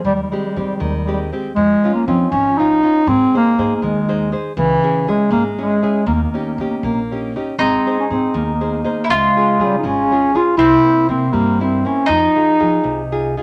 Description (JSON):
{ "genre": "italian folk, Italian serenade", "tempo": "80 BPM (dotted quarters)", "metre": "6/8", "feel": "straight", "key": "Ab major", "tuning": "A4 = 438 Hz", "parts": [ { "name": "mellow bass clarinet", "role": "melody", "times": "0.0-13.1 s", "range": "Fb3 to F4", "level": "-18 LUFS", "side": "equal", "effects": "none" }, { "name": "upright bass", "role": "bass", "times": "0.0-13.3 s", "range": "Ab1 to F3", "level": "-28 LUFS", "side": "equal", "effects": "none" }, { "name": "nylon-string guitar", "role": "accompaniment", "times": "0.1-13.4 s", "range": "C3 to C5", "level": "-24 LUFS", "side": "equal", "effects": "none" }, { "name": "mandolin", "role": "second line", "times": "7.6-13.3 s", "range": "C4 to F4", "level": "-22 LUFS", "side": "equal", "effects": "none" } ], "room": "moderate club reverb, RT60 0.8 s", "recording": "none", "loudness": "-16 LUFS", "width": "mono", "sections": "0.0-13.4 A section", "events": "none", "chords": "0.0 Abmaj7/Eb; 1.6 Dbadd9/F; 3.1 Ab; 4.6 Dbm; 6.1 Eb7; 7.6 Ab; 9.1 Db; 10.6 C7; 12.1 Fm7" }